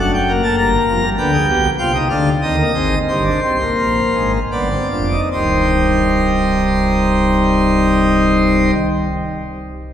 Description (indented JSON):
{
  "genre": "classical, baroque-style 3-part fugue for pipe organ",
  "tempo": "72-101 BPM",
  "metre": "3/4",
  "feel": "straight",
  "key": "C minor",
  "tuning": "A4 = 440 Hz",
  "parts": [
    { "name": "pipe organ, plenum", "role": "solo", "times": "0.0-8.7 s", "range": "C1 to Bb5", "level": "-14 LUFS", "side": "equal", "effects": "none" }
  ],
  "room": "wet church reverb, RT60 3.6 s",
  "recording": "recorded in a church or concert hall",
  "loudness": "-13 LUFS",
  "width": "side -10 dB against mid",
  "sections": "0.0-5.3 A section; 5.3-9.9 B section",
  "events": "slowing down 0.3-5.3",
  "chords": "0.0 D/F#; 0.6 Gm; 1.2 G7; 2.4 Cm/Eb; 3.1 Cm/G; 4.5 G7; 5.3 Cm",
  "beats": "0.57 | 1.17 1.79 2.42 | 3.08 3.78 4.52 | 5.32 6.15 6.98 | 7.82 8.64"
}